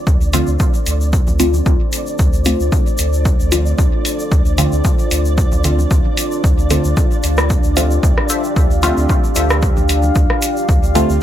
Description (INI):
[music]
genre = dub techno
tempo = 113 BPM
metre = 4/4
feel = swing 54% on 16ths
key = D minor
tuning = A4 = 440 Hz
[part]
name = deep dark ambient pad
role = sustained chords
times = 0.0-11.2 s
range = D4 to F5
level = -22 LUFS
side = left 1 dB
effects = chorus, built-in reverb, sidechain pumping
[part]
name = flickering grainy texture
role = texture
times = 0.0-11.2 s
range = D5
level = -29 LUFS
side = right 3 dB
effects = built-in reverb, sidechain pumping
[part]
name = warm sub bass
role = bass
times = 0.1-11.2 s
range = D2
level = -17 LUFS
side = equal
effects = sidechain pumping
[part]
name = electronic kick drum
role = drums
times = 0.1-10.8 s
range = none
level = -15 LUFS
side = equal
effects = none
[part]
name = egg shaker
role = percussion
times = 0.1-11.2 s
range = none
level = -27 LUFS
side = left 3 dB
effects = none
[part]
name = filtered dub chord stab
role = stabs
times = 0.3-11.2 s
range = D3 to F4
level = -20 LUFS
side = equal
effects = phaser, cassette tape, sidechain pumping, dub echo
[part]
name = punchy analog drum machine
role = drums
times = 0.3-11.1 s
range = hi-hat, rim click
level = -21 LUFS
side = equal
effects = none
[part]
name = congas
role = percussion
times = 0.3-11.1 s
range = none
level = -32 LUFS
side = right 1 dB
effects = none
[part]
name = wavetable chord stab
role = riff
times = 8.3-9.6 s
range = F4 to E5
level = -26 LUFS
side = left 3 dB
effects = sidechain pumping, dub echo
[sound]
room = digital ambience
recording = none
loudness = -12 LUFS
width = side -11 dB against mid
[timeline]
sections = 0.0-11.2 A section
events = none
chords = 0.0 Dm7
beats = | 0.07 0.60 1.13 1.66 | 2.19 2.72 3.25 3.79 | 4.32 4.85 5.38 5.91 | 6.44 6.97 7.50 8.03 | 8.56 9.10 9.63 10.16 | 10.69 11.22